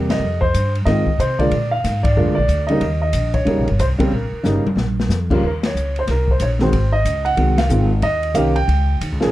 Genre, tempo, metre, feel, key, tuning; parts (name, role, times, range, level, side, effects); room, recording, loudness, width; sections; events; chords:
jazz piano trio; 184 BPM; 4/4; swing 63% on 8ths; Eb mixolydian; A4 = 440 Hz
dark concert grand piano; melody; 0.0-9.3 s; C3 to G5; -19 LUFS; right 1 dB
upright bass; bass; 0.0-9.3 s; G1 to C3; -19 LUFS; equal
open jazz drum kit; drums; 0.1-9.3 s; crash cymbal, hi-hat, kick drum, ride cymbal, snare drum, toms; -24 LUFS; left 1 dB
little or no reverb; dark, warm production; -15 LUFS; side -15 dB against mid
0.0-5.4 A section; 5.4-9.3 A section
band accent 0.1, 2.0, 4.0, 5.6, 7.5; drum fill 4.4-5.1
0.2 Fm7; 1.5 Bb7; 2.8 Eb7; 4.8 Bb5; 5.4 Eb5; 6.7 Ab7; 8.0 Eb7